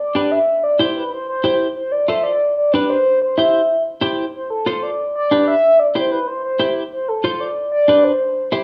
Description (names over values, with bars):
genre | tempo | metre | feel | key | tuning
latin | 186 BPM | 4/4 | straight | C major | A4 = 439 Hz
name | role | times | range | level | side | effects
mellow horn-like synth lead | melody | 0.0-8.6 s | A4 to E5 | -18 LUFS | equal | chorus, plate reverb
clean electric guitar | accompaniment | 0.1-8.6 s | D4 to C5 | -22 LUFS | equal | analog chorus, plate reverb
room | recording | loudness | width
wet small room reverb, RT60 0.6 s | rough home demo mix, small room ambience | -17 LUFS | mono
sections
0.0-8.6 A section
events
none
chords
0.5 C; 1.8 F; 2.4 G; 3.1 C; 4.3 F; 5.0 G; 5.6 C; 6.9 F; 7.6 G